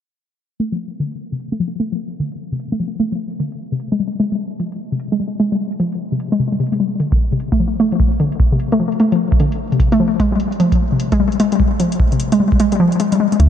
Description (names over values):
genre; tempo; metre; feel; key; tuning
IDM; 150 BPM; 4/4; swing 62% on 16ths; D minor; A4 = 441 Hz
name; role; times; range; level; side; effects
warbly dusty pluck; arpeggios; 0.6-13.5 s; C3 to A3; -16 LUFS; left 1 dB; chorus, ping-pong delay
electronic hi-hat; drums; 0.6-13.5 s; none; -35 LUFS; left 4 dB; low-pass filter on hats
electronic kick drum; drums; 7.1-13.5 s; none; -17 LUFS; equal; none
round analog bass; bass; 13.4-13.5 s; D2; -8 LUFS; equal; none
room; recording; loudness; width
moderate huge ambient reverb, RT60 8.0 s; dreamy mix soaked in reverb, low-pass filter; -15 LUFS; side -9 dB against mid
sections
0.6-13.4 A section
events
filter sweep on drum 0.6-13.4; filter sweep on synth arpeggio sound 0.6-13.4; filter sweep 0.6-13.4; kick drops out 12.6-13.4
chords
0.6 Dm7; 3.8 Fmadd9; 7.0 Dm7; 10.2 Fmadd9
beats
| 0.60 1.00 1.40 1.80 | 2.20 2.60 3.00 3.40 | 3.80 4.20 4.60 5.00 | 5.40 5.80 6.20 6.60 | 7.00 7.40 7.80 8.20 | 8.60 9.00 9.40 9.80 | 10.20 10.60 11.00 11.40 | 11.80 12.20 12.60 13.00 | 13.40